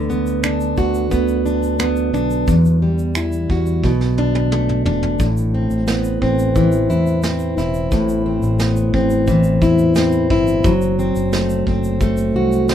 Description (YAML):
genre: acoustic pop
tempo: 88 BPM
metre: 4/4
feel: straight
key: unclear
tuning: A4 = 440 Hz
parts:
  - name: fingerpicked plugged-in steel-string acoustic guitar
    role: accompaniment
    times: 0.0-12.7 s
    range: E2 to F#4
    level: -16 LUFS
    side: equal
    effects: none
  - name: fingered electric bass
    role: bass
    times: 0.0-12.7 s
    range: E1 to E2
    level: -21 LUFS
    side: equal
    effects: none
  - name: vintage brush drum kit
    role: drums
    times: 0.1-12.7 s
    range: finger snaps, kick drum, shaker, snare drum, toms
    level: -23 LUFS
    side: right 1 dB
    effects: none
room: light reverb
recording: minimal, uncompressed stereo recording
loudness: -15 LUFS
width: side -9 dB against mid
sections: 0.0-5.2 A section; 5.2-12.7 B section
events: drum fill 3.8-5.2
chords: 0.0 Bm/D; 2.5 Emadd9; 3.8 Bm7; 5.2 Amadd9; 10.6 F#dim